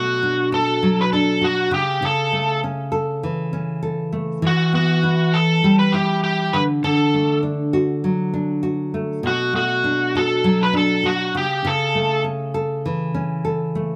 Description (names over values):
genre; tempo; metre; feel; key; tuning
acoustic pop; 100 BPM; 4/4; swing 55% on 16ths; unclear; A4 = 439 Hz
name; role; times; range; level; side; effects
overdriven slide guitar; melody; 0.0-12.2 s; F#4 to B4; -22 LUFS; equal; none
nylon-string guitar; accompaniment; 0.0-14.0 s; B2 to A4; -22 LUFS; equal; none
room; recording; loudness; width
little or no reverb; close, detailed microphones; -20 LUFS; mono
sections
0.0-14.0 A section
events
none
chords
0.0 Bm7; 1.7 A/C#; 4.4 Emadd9; 6.5 D; 9.2 Bm7; 11.3 A/C#